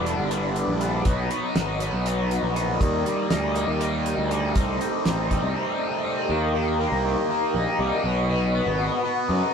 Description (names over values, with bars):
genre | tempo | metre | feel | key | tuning
psychedelic rock | 240 BPM (eighths) | 7/8 | straight | unclear | A4 = 440 Hz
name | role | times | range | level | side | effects
hand-pumped harmonium | sustained chords | 0.0-9.5 s | F#3 to Eb5 | -30 LUFS | right 5 dB | none
biting overdriven guitar | riff | 0.0-9.5 s | G2 to D#4 | -25 LUFS | left 2 dB | phaser
fuzz picked electric bass | bass | 0.0-9.4 s | E1 to F#2 | -27 LUFS | equal | overdrive
damped 70s drum kit | drums | 0.1-5.4 s | hi-hat, kick drum, snare drum | -26 LUFS | right 1 dB | none
room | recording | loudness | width
light reverb | band playing live in one room | -22 LUFS | side -6 dB against mid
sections
0.0-6.3 A section; 6.3-9.5 B section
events
break 5.6-6.3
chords
0.0 G6; 1.1 B; 2.8 Ebmaj7; 4.6 Cm6; 6.3 Eb; 8.0 B